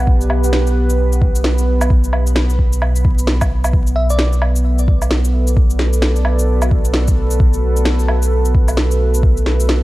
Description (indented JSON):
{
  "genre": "future garage",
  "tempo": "131 BPM",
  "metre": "4/4",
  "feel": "swing 61% on 16ths",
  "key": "B minor",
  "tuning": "A4 = 440 Hz",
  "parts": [
    { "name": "bell-like FM electric piano", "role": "melody", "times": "0.0-0.1, 4.0-4.4 s", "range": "D5 to E5", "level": "-26 LUFS", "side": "left 1 dB", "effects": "chorus, tape echo" },
    { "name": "deep dark ambient pad", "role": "sustained chords", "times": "0.0-9.8 s", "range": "B3 to B5", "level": "-22 LUFS", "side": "right 1 dB", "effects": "chorus, built-in reverb, sidechain pumping" },
    { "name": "warm sub bass", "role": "bass", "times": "0.0-9.8 s", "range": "B1", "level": "-15 LUFS", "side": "equal", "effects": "sidechain pumping" },
    { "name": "electronic kick drum", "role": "drums", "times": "0.1-9.3 s", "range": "none", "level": "-14 LUFS", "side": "equal", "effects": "overdrive" },
    { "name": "electronic shaker, woodblock and snare drum", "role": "drums", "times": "0.2-9.8 s", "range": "none", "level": "-21 LUFS", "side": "equal", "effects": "overdrive" }
  ],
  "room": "little or no reverb",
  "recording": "vinyl crackle",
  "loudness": "-12 LUFS",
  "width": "side -18 dB against mid",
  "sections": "0.0-3.7 A section; 3.7-9.8 A section",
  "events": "none",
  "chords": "0.0 Gadd9/B; 3.7 Bm7"
}